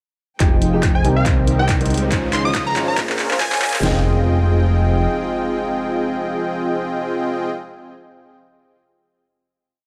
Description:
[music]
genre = future bass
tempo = 140 BPM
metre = 4/4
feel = swing 55% on 16ths, half-time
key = F minor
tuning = A4 = 440 Hz
[part]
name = warm baby grand piano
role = accompaniment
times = 0.4-7.5 s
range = F3 to G5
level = -30 LUFS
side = equal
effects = sidechain pumping, digital delay
[part]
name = clear studio string section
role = sustained chords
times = 0.4-7.5 s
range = Db3 to G5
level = -32 LUFS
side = equal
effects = sidechain pumping
[part]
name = thumb-piano-like synth pluck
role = arpeggios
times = 0.4-4.0 s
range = Eb4 to Eb5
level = -32 LUFS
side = equal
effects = none
[part]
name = soft supersaw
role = riff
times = 0.4-7.5 s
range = C4 to G5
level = -25 LUFS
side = equal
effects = sidechain pumping, low-pass filter, digital delay
[part]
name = fat analog bass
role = bass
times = 0.4-5.1 s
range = F1 to Db2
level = -21 LUFS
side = equal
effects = sidechain pumping
[part]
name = dubstep drum kit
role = drums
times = 0.4-3.9 s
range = hi-hat, kick drum, snare drum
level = -22 LUFS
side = equal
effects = none
[part]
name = dubstep drum kit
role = drums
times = 0.4-3.8 s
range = handclaps, hi-hat, woodblock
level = -26 LUFS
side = equal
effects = none
[part]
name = riser and impact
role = sound effects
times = 1.9-7.5 s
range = none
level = -35 LUFS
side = equal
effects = none
[part]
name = plucky unison lead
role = melody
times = 0.9-3.8 s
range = F5 to Eb6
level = -27 LUFS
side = equal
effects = sidechain pumping, dub echo
[sound]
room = light reverb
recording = dark, warm production, high-pass filter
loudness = -18 LUFS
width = mono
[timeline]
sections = 0.4-3.8 build; 3.8-7.3 final chord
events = build-up 0.4-3.8; drum fill 0.4-3.8; filter sweep on supersaw synth 0.4-3.8; filter sweep 0.4-3.8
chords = 0.4 Fm9; 1.0 Cm7; 2.1 Dbmaj9; 3.0 Bbm9; 3.8 Fm9

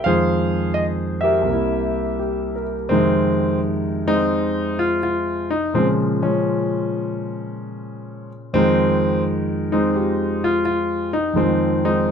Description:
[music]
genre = solo jazz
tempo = 85 BPM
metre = 4/4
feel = swing 67% on 8ths, rubato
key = F minor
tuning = A4 = 438 Hz
[part]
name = warm concert grand piano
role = solo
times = 0.0-12.1 s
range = C2 to F5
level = -18 LUFS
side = equal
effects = none
[sound]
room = moderate studio reverb, RT60 0.6 s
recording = dark, warm production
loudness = -18 LUFS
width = side -7 dB against mid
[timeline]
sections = 0.0-2.9 A section; 2.9-12.1 A section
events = none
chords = 0.1 Fm7; 1.5 C7; 2.9 Fm7; 5.8 Bbm7; 8.6 Fm7

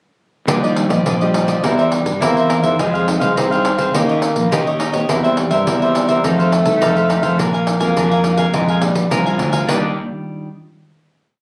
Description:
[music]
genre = samba and choro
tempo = 104 BPM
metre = 4/4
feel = straight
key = Eb major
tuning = A4 = 440 Hz
[part]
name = breathy tenor saxophone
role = second line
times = 0.5-9.9 s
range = F3 to C4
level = -23 LUFS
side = equal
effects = none
[part]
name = cavaquinho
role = accompaniment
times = 0.5-9.9 s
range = D4 to Ab5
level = -22 LUFS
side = equal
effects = none
[part]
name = nylon-string guitar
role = accompaniment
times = 0.5-10.5 s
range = Bb2 to A4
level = -26 LUFS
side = equal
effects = none
[part]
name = fuzz fingered electric bass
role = bass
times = 0.5-9.9 s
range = Bb1 to G2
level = -22 LUFS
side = equal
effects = overdrive
[part]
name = pandeiro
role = percussion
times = 0.5-9.8 s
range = none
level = -24 LUFS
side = equal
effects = none
[sound]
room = moderate studio reverb, RT60 0.5 s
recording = recorded on a phone in the room, club reverb, compression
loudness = -16 LUFS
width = mono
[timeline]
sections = 0.5-9.7 groove; 9.7-11.4 final chord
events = none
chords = 0.5 Ebmaj9; 1.6 C7/E; 2.8 Fm7; 3.9 Eb7; 5.1 C7/E; 6.2 F7; 7.4 Bb7; 9.7 Ebmaj9

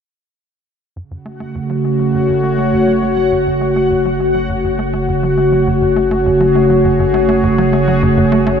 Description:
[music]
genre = ambient, sequencer-driven space music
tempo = 102 BPM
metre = 4/4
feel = straight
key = F# minor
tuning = A4 = 444 Hz
[part]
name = sweeping resonant pad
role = sustained chords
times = 1.0-8.6 s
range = C#3 to C#5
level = -12 LUFS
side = equal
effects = chorus
[part]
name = tight sequencer bass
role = riff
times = 1.0-8.5 s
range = F#2 to A3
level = -22 LUFS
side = equal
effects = ping-pong delay
[part]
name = warm sub bass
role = bass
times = 1.0-8.6 s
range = F#1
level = -26 LUFS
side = equal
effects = none
[part]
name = bubbling stepped-filter texture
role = texture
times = 1.4-8.6 s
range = F#4 to F#5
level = -26 LUFS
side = right 1 dB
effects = chorus, built-in reverb
[sound]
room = wet huge ambient reverb, RT60 7.8 s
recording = none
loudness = -12 LUFS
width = side -7 dB against mid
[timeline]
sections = 1.0-8.6 A section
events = fade-in on analog synth bass 1.0-8.6; fade-in on sub bass 1.0-8.6; fade-in on synth texture 1.0-8.6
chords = 1.0 F#m

